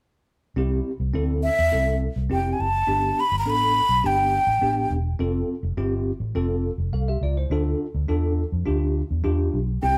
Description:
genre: uptempo 1960s-style soul.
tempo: 104 BPM.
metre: 4/4.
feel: straight.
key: C major.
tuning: A4 = 440 Hz.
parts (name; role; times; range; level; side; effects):
bell-like tine electric piano; accompaniment; 0.6-10.0 s; B3 to F5; -30 LUFS; equal; none.
vintage muted fingered electric bass; bass; 0.6-10.0 s; E1 to F2; -27 LUFS; equal; none.
breathy mellow silver concert flute; melody; 1.4-4.9, 9.8-10.0 s; E5 to B5; -23 LUFS; equal; none.
room: moderate studio reverb, RT60 0.9 s.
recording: band playing live in one room.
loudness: -23 LUFS.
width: mono.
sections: 0.6-10.0 A section.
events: none.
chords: 0.6 C; 2.9 G; 5.2 F; 7.5 Dm.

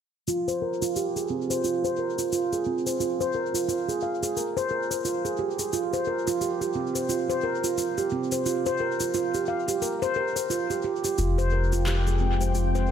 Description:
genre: organic downtempo.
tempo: 88 BPM.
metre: 4/4.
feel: swing 59% on 16ths.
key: F minor.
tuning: A4 = 439 Hz.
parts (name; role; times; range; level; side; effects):
handpan; arpeggios; 0.3-12.9 s; C4 to F5; -26 LUFS; right 2 dB; low-pass filter, analog delay.
electronic cabasa and handclaps; drums; 0.3-12.9 s; none; -34 LUFS; left 3 dB; overdrive, tape echo.
bronze singing bowl; texture; 0.3-12.9 s; F4; -37 LUFS; left 2 dB; none.
ethereal airy pad; sustained chords; 11.6-12.9 s; F3 to G5; -32 LUFS; left 4 dB; ensemble chorus, built-in reverb, phaser.
round analog bass; bass; 11.2-12.9 s; F1; -24 LUFS; left 1 dB; none.
room: moderate plate reverb, RT60 2.1 s.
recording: echo-heavy mix.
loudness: -24 LUFS.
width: side -8 dB against mid.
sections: 0.3-12.9 A section.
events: filter sweep on handpan 0.3-12.9.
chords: 0.3 Fm; 5.7 C7sus4; 11.2 Fm.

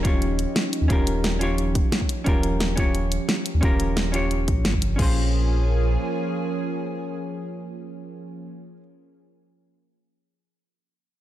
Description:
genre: liquid drum and bass.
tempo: 176 BPM.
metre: 4/4.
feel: straight.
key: Bb dorian.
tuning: A4 = 440 Hz.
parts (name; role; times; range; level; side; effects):
hollow-body jazz guitar; accompaniment; 0.0-8.8 s; Db4 to Db5; -28 LUFS; left 1 dB; vintage 12-bit sampler grit, ping-pong delay.
lush unison pad; sustained chords; 0.0-8.5 s; F3 to Ab4; -30 LUFS; right 1 dB; chorus.
sub bass with octave; bass; 0.0-6.0 s; Eb1 to Eb2; -24 LUFS; equal; none.
electronic kick drum; drums; 0.0-5.1 s; none; -22 LUFS; equal; studio reverb.
pop drum kit; drums; 0.0-5.1 s; crash cymbal, hi-hat, snare drum; -27 LUFS; equal; studio reverb.
room: light reverb, digital ambience.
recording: dark, warm production.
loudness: -20 LUFS.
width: side -13 dB against mid.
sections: 0.0-5.0 A section; 5.0-7.7 B section.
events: none.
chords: 0.0 Eb9; 5.0 Bbm7.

